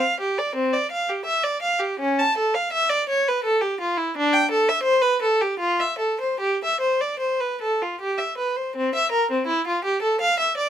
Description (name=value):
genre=classical, baroque-style suite movement for unaccompanied violin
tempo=70-86 BPM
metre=3/4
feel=rubato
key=C major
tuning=A4 = 440 Hz
part: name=rich violin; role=solo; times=0.0-10.7 s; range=C4 to A5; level=-20 LUFS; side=equal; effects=none
room=light reverb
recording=minimal, uncompressed stereo recording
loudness=-20 LUFS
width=side -10 dB against mid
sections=0.0-8.7 A section; 8.7-10.7 B section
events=none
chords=none